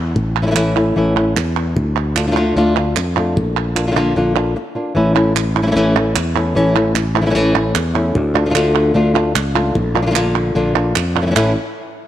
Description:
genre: flamenco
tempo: 150 BPM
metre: 4/4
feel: straight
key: unclear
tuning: A4 = 441 Hz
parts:
  - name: sustaining fretless electric bass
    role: bass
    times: 0.0-11.5 s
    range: A1 to F2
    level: -19 LUFS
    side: equal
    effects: none
  - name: flamenco guitar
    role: melody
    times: 0.2-11.5 s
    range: A2 to F4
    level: -16 LUFS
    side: left 1 dB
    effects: none
  - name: palmas hand claps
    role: percussion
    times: 0.4-11.5 s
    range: none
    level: -22 LUFS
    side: right 11 dB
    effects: none
room: light reverb, small room ambience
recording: 1960s-style stereo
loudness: -14 LUFS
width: side -12 dB against mid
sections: 0.0-5.0 A section; 5.0-11.4 A section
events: break 4.6-5.0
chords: 0.0 A; 1.8 Dm; 3.4 Bb; 5.0 A; 8.2 Dm; 9.8 Bb; 11.4 A

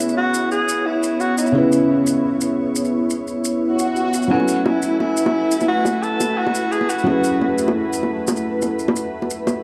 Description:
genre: liquid drum and bass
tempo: 174 BPM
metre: 4/4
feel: straight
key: F# minor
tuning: A4 = 440 Hz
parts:
  - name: breathy tenor saxophone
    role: melody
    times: 0.0-2.0, 4.3-7.6 s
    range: E4 to A4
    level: -24 LUFS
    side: equal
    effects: digital delay
  - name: felt-muted upright piano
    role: accompaniment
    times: 0.0-9.6 s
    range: C#3 to G#5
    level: -25 LUFS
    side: equal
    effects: none
  - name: glassy FM pad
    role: sustained chords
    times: 0.0-9.6 s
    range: A3 to G#5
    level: -24 LUFS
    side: equal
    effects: ensemble chorus, built-in reverb
  - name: shaker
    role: drums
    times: 0.0-9.6 s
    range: none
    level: -31 LUFS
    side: equal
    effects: overdrive
  - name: swell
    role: sound effects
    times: 3.7-4.3 s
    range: none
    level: -28 LUFS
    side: equal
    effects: none
  - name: bongos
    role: percussion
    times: 4.4-9.5 s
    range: none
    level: -24 LUFS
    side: equal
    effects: none
room: moderate huge ambient reverb, RT60 4.0 s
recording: small room ambience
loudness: -19 LUFS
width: mono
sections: 0.0-9.6 A section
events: swell 3.7-4.3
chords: 0.0 C#m7; 4.3 F#m11

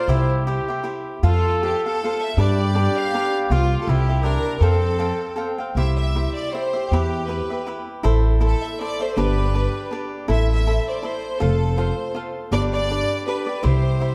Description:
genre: mexican folk, mariachi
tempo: 159 BPM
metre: 3/4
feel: swing 55% on 8ths, rubato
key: F major, C major from 5.8 s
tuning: A4 = 440 Hz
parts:
  - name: bright studio violin section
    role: melody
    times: 0.0-14.1 s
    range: F4 to F5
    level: -29 LUFS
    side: equal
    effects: none
  - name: warm trumpet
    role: second line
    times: 0.0-5.7 s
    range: C4 to A4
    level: -29 LUFS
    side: equal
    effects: none
  - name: cavaquinho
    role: accompaniment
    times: 0.0-14.1 s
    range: D4 to G5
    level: -28 LUFS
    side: equal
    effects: none
  - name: upright bass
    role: bass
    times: 0.1-14.1 s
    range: F1 to G2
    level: -22 LUFS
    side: equal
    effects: none
room: moderate recital hall reverb, RT60 1.6 s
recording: dark, warm production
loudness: -21 LUFS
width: mono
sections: 0.0-5.8 A section; 5.8-14.1 B section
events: none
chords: 0.1 C; 1.2 F; 2.4 G; 3.5 Csus4; 3.9 C; 4.6 Fadd9; 5.8 C; 6.9 Em; 8.0 Am; 9.2 G; 10.3 Am; 11.4 F; 12.5 G; 13.6 C

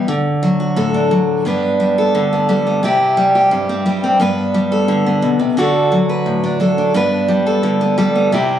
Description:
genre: country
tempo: 175 BPM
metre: 4/4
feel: straight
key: G major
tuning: A4 = 438 Hz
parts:
  - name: picked steel-string acoustic guitar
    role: solo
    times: 0.0-8.6 s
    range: G2 to B4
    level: -13 LUFS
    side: equal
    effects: none
room: light reverb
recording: recorded on a phone in the room, club reverb, compression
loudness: -13 LUFS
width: side -10 dB against mid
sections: 0.0-1.5 A section; 1.5-8.6 B section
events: none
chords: 0.1 D; 1.5 G; 2.8 C; 4.2 G; 5.6 D; 6.9 G

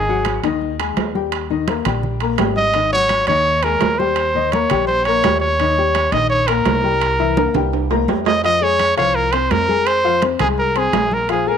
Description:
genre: Afro-Cuban jazz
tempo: 168 BPM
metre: 4/4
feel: straight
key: unclear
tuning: A4 = 440 Hz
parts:
  - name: clear trumpet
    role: melody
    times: 0.0-11.6 s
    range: Ab4 to Eb5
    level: -17 LUFS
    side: right 1 dB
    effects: none
  - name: warm upright piano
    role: accompaniment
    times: 0.0-11.6 s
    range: Eb3 to C6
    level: -21 LUFS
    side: left 12 dB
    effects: none
  - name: upright bass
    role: bass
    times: 0.0-11.6 s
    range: Ab1 to F2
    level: -24 LUFS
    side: right 1 dB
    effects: none
  - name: congas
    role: percussion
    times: 0.1-11.6 s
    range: none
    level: -26 LUFS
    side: equal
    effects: none
  - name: timbales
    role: percussion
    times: 0.2-11.5 s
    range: none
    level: -24 LUFS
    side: right 16 dB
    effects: none
room: light reverb, small room ambience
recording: 1960s-style stereo with parts hard left and right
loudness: -15 LUFS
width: side -7 dB against mid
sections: 0.0-11.6 A section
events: drum fill 7.4-8.4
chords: 0.0 Ab5; 1.3 Eb; 2.7 Ab5; 4.2 Eb7; 7.0 C7; 8.4 Fm

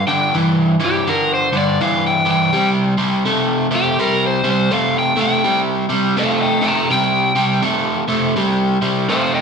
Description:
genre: rock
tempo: 82 BPM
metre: 4/4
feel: swing 62% on 8ths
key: unclear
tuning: A4 = 438 Hz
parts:
  - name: overdriven slide guitar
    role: melody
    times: 0.0-9.4 s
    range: G4 to Bb5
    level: -18 LUFS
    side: left 1 dB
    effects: none
  - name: overdriven electric guitar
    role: riff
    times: 0.0-9.4 s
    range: G2 to A3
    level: -16 LUFS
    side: right 1 dB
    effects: none
room: wet large studio reverb, RT60 1.1 s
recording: band playing live in one room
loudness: -14 LUFS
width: side -6 dB against mid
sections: 0.0-9.4 A section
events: none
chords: 0.0 G5; 2.5 C5

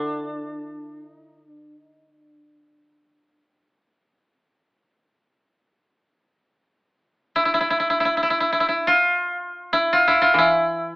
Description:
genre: japanese traditional, Japanese chamber music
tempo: free time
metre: none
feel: none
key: D hirajoshi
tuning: A4 = 445 Hz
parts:
  - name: koto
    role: melody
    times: 0.0-11.0 s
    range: D4 to F4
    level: -18 LUFS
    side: equal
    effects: none
  - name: koto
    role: accompaniment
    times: 0.0-11.0 s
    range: D3 to E3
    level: -25 LUFS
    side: equal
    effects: none
room: moderate studio reverb, RT60 0.6 s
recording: AM radio sound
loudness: -17 LUFS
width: side -38 dB against mid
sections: 0.0-11.0 A section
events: none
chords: none

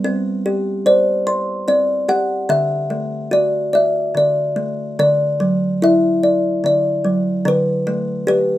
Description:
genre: children's music, lullaby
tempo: 73 BPM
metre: 3/4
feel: rubato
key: unclear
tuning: A4 = 440 Hz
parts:
  - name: kalimba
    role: solo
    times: 0.0-8.6 s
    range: D3 to C6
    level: -15 LUFS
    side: equal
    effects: none
room: light reverb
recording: minimal, uncompressed stereo recording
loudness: -15 LUFS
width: side -14 dB against mid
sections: 0.0-8.6 A section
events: none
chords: 0.0 Csus2; 2.5 D; 5.0 Dadd9; 7.5 Gadd9/D

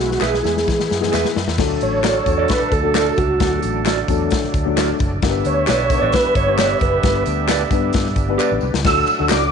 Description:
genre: uptempo 1960s-style soul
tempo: 132 BPM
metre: 4/4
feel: straight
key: unclear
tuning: A4 = 440 Hz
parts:
  - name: mellow tonewheel organ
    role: melody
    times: 0.0-9.5 s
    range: F#4 to E6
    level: -19 LUFS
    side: right 2 dB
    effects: chorus vibrato, slow rotary speaker
  - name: dark upright piano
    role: accompaniment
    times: 0.0-9.5 s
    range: E3 to B4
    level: -24 LUFS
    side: left 14 dB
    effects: none
  - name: overdriven tonewheel organ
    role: sustained chords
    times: 0.0-9.5 s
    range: D3 to F#4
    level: -28 LUFS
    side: right 1 dB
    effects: chorus vibrato, slow rotary speaker
  - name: vintage muted fingered electric bass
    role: bass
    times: 0.0-9.5 s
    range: F#1 to E3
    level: -24 LUFS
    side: right 1 dB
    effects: none
  - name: natural country drum kit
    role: drums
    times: 0.0-9.4 s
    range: crash cymbal, hi-hat, kick drum, ride cymbal, snare drum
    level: -21 LUFS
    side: left 2 dB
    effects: none
  - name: electric guitar through a small old amp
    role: stabs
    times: 0.2-9.4 s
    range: F#4 to E5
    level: -25 LUFS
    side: right 14 dB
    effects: spring reverb
  - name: handclaps and tambourine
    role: percussion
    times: 0.2-9.4 s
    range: none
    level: -29 LUFS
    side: left 6 dB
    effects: none
  - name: warm horn section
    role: second line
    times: 1.6-8.6 s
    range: F#3 to E5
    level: -26 LUFS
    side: right 13 dB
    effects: none
room: light reverb, studio reverb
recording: 1960s-style stereo with parts hard left and right, nothing above 10.4 kHz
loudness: -15 LUFS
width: side -6 dB against mid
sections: 0.0-1.6 A section; 1.6-8.8 B section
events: drum fill 0.0-1.6, 8.4-8.8; upright piano fill 8.2-8.8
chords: 0.0 E; 1.6 D; 5.2 G; 8.8 D

